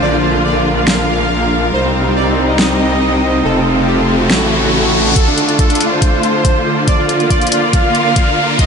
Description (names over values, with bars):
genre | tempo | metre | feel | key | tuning
heavy wobble dubstep | 140 BPM | 4/4 | half-time | unclear | A4 = 440 Hz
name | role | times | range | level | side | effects
soft supersaw | melody | 0.0-8.7 s | C4 to F5 | -16 LUFS | right 1 dB | tape echo
warm studio string section | sustained chords | 0.0-8.7 s | C3 to G4 | -16 LUFS | equal | sidechain pumping, low-pass filter
metallic wobble bass | bass | 0.0-5.1 s | F1 to C2 | -18 LUFS | equal | distortion, chorus, overdrive
bright studio string section | texture | 0.0-8.7 s | D4 to Bb5 | -22 LUFS | equal | sidechain pumping
dubstep drum kit | drums | 0.9-8.7 s | hi-hat, snare drum | -20 LUFS | left 1 dB | overdrive, studio reverb
riser | sound effects | 3.6-8.7 s | none | -21 LUFS | left 2 dB | none
electronic kick drum | drums | 5.2-8.7 s | none | -13 LUFS | equal | overdrive, studio reverb
room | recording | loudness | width
wet huge ambient reverb, RT60 7.9 s | dreamy mix soaked in reverb, nothing above 10.9 kHz | -11 LUFS | side -6 dB against mid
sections
0.0-5.2 A section; 5.2-8.7 B section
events
riser 3.6-5.2, 5.2-8.7; build-up 5.2-8.7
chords
0.0 Bb; 1.7 Cm; 3.4 F; 4.3 A; 5.2 Dm; 6.9 Bb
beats
| 0.02 0.45 0.88 1.30 | 1.73 2.16 2.59 3.02 | 3.45 3.88 4.30 4.73 | 5.16 5.59 6.02 6.45 | 6.88 7.30 7.73 8.16 | 8.59